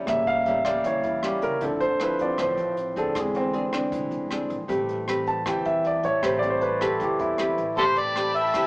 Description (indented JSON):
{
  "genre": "bossa nova",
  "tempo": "156 BPM",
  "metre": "4/4",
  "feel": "straight",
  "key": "A minor",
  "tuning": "A4 = 440 Hz",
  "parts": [
    { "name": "nylon-string guitar", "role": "accompaniment", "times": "0.0-8.7 s", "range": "A2 to B4", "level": "-29 LUFS", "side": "equal", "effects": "none" },
    { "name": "warm concert grand piano", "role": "accompaniment", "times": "0.0-8.7 s", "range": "C3 to A5", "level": "-24 LUFS", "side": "equal", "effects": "none" },
    { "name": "upright bass", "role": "bass", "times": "0.0-8.7 s", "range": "A1 to E2", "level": "-39 LUFS", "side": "equal", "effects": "none" },
    { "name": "jazz brush drum kit", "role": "drums", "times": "0.1-8.6 s", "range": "hi-hat, kick drum, rim click", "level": "-37 LUFS", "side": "equal", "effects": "none" },
    { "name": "overdriven harmonica", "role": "melody", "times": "7.8-8.7 s", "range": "G4 to E5", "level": "-21 LUFS", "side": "equal", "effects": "none" },
    { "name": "dark studio string section", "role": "sustained chords", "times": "7.8-8.7 s", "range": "G5 to B5", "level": "-30 LUFS", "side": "left 1 dB", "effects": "none" }
  ],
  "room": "moderate large studio reverb, RT60 1.4 s",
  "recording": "band playing live in one room, small speaker sound",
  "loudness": "-22 LUFS",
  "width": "side -26 dB against mid",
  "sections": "0.0-7.8 A section",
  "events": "grand piano solo 0.0-7.8",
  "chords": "0.1 A7b9; 1.6 Dm9; 3.1 Eaug7; 4.7 Am9"
}